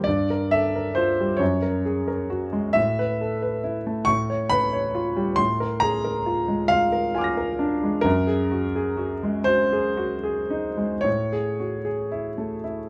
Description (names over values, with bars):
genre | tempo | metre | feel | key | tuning
classical, impressionist solo piano | 37-47 BPM (dotted quarters) | 6/8 | rubato | unclear | A4 = 440 Hz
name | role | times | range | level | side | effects
warm concert grand piano | solo | 0.0-12.9 s | Gb2 to Bb6 | -24 LUFS | equal | none
room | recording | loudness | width
light reverb | close, detailed microphones | -24 LUFS | mono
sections
0.0-12.9 A section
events
none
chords
0.1 Gm7; 1.4 Gbadd9; 2.8 Asus2; 4.1 G7#11/A; 5.4 Bb7/A; 8.1 Gb69; 11.1 Amaj7